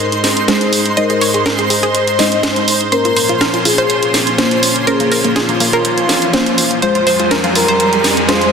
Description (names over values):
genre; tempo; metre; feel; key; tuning
progressive house; 123 BPM; 4/4; straight; Bb minor; A4 = 440 Hz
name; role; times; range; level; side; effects
expressive synth lead; melody; 0.0-8.5 s; F4 to C5; -18 LUFS; left 2 dB; wide subtle chorus, vintage 12-bit sampler grit, digital delay
lush unison pad; sustained chords; 0.0-8.5 s; F2 to C5; -19 LUFS; right 1 dB; chorus
analog pluck; arpeggios; 0.0-8.5 s; Bb3 to Eb5; -19 LUFS; equal; chorus, digital delay
deep mellow chord stab; stabs; 0.0-8.5 s; Ab3 to Eb5; -18 LUFS; left 2 dB; chorus, phaser, digital delay
twinkling granular texture; texture; 0.0-8.5 s; C6; -24 LUFS; right 3 dB; built-in reverb
house drum kit; drums; 0.1-8.5 s; hi-hat, snare drum; -16 LUFS; right 1 dB; overdrive
riser; sound effects; 4.8-8.5 s; none; -21 LUFS; right 1 dB; none
room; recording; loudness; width
wet lush hall reverb, RT60 2.1 s; dense, heavily limited modern master; -11 LUFS; side -6 dB against mid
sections
0.0-8.5 A section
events
build-up 0.0-8.5; filter sweep on synth pluck 0.0-8.5; filter sweep on synth stab 0.0-8.5; filter sweep on analog synth lead 0.0-8.5; riser 4.8-8.5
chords
0.0 Ab; 2.9 Bbmadd9; 6.8 Fm